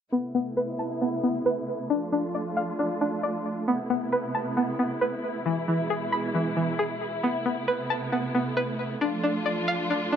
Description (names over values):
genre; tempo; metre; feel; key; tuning
hip hop; 135 BPM; 4/4; half-time; A harmonic minor; A4 = 440 Hz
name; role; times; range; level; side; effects
dark symphonic string section; sustained chords; 0.1-10.2 s; B2 to F4; -30 LUFS; right 1 dB; low-pass filter
string-like resonator pluck; arpeggios; 0.1-10.2 s; E3 to B5; -26 LUFS; equal; chorus, low-pass filter, digital delay
room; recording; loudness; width
moderate recital hall reverb, RT60 1.6 s, studio reverb; none; -25 LUFS; side -8 dB against mid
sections
0.1-10.2 A section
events
filter sweep 0.1-10.2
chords
0.1 Amadd9; 1.9 Dm; 3.7 Amadd9; 5.5 E; 7.2 Amadd9; 9.0 Dm